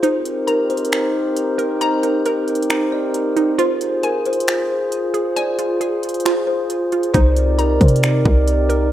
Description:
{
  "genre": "hip hop, atmospheric cloud-rap",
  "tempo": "135 BPM",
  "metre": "4/4",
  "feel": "half-time",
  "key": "C minor",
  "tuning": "A4 = 440 Hz",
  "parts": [
    { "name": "kalimba", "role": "melody", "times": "0.0-8.0 s", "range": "Bb4 to Eb5", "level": "-24 LUFS", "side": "left 1 dB", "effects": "low-pass filter, tape echo" },
    { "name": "glass harmonica", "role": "sustained chords", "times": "0.0-8.9 s", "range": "C4 to D5", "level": "-20 LUFS", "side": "equal", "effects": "sidechain pumping" },
    { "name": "hollow square pluck", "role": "arpeggios", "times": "0.0-8.9 s", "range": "Eb4 to Bb5", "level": "-23 LUFS", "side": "right 4 dB", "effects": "chorus, low-pass filter, tape echo" },
    { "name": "trap drum kit", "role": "drums", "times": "0.0-8.8 s", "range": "finger snaps, hi-hat, kick drum", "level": "-21 LUFS", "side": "equal", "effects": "none" },
    { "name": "clean 808-style bass", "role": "bass", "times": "7.1-8.9 s", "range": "C2 to C3", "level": "-16 LUFS", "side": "equal", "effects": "none" }
  ],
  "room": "light reverb",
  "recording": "rough home demo mix, faint mains hum",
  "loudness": "-16 LUFS",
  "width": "side -12 dB against mid",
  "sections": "0.0-8.9 A section",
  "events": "break 0.0-7.1",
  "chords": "0.0 Cm7; 3.6 Fm; 7.1 Cm7",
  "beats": "| 0.03 0.48 0.92 1.36 | 1.81 2.25 2.70 3.14 | 3.59 4.03 4.48 4.92 | 5.37 5.81 6.25 6.70 | 7.14 7.59 8.03 8.48 | 8.92"
}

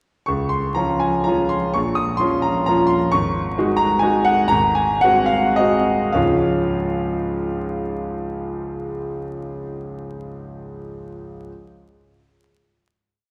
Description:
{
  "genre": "classical, piano waltz",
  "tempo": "101-138 BPM",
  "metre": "3/4",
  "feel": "rubato",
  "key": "Db major",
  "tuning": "A4 = 440 Hz",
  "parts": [
    { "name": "bright grand piano", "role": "solo", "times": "0.3-11.5 s", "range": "Ab1 to Eb6", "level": "-20 LUFS", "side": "equal", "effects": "none" }
  ],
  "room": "wet concert hall reverb, RT60 1.8 s",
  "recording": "heard from further back in the room, vinyl crackle",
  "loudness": "-20 LUFS",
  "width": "mono",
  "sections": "0.3-6.1 A section; 6.1-9.4 final chord",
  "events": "slowing down 2.4-6.1",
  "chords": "0.3 Db; 1.7 Bbm; 3.1 Ab7sus4; 4.5 Ab7; 6.1 Db",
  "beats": "| 0.27 0.77 1.26 | 1.74 2.20 2.68 | 3.13 3.58 4.04 | 4.52 5.02 5.57 | 6.14 6.67 7.23 | 7.76 8.30 8.86"
}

